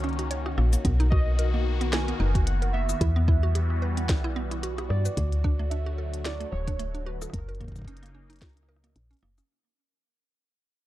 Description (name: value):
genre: IDM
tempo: 111 BPM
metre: 4/4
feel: swing 56% on 16ths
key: unclear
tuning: A4 = 438 Hz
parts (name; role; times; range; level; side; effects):
- warbly lo-fi synth keys; melody; 0.0-9.2 s; A#4 to G#5; -38 LUFS; right 4 dB; chorus, phaser, tape echo
- phased analog pad; sustained chords; 0.0-9.5 s; C#3 to F#4; -35 LUFS; left 2 dB; phaser, chorus
- mallet-like synth pluck; arpeggios; 0.0-9.5 s; A3 to D5; -36 LUFS; right 5 dB; chorus, digital delay
- woody FM bass; bass; 0.0-9.4 s; D1 to G2; -26 LUFS; equal; tube saturation
- glitchy drum kit; drums; 0.0-9.5 s; cabasa, hi-hat, rim click, snare drum; -34 LUFS; left 1 dB; none
- electronic kick drum; drums; 0.8-8.5 s; none; -26 LUFS; equal; none
room: little or no reverb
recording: dark, warm production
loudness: -24 LUFS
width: side -15 dB against mid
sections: 0.0-9.5 A section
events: fade-out 3.7-9.5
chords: 0.0 F#6; 0.8 Bmaj7; 3.0 Emadd9; 5.2 D; 7.3 F#6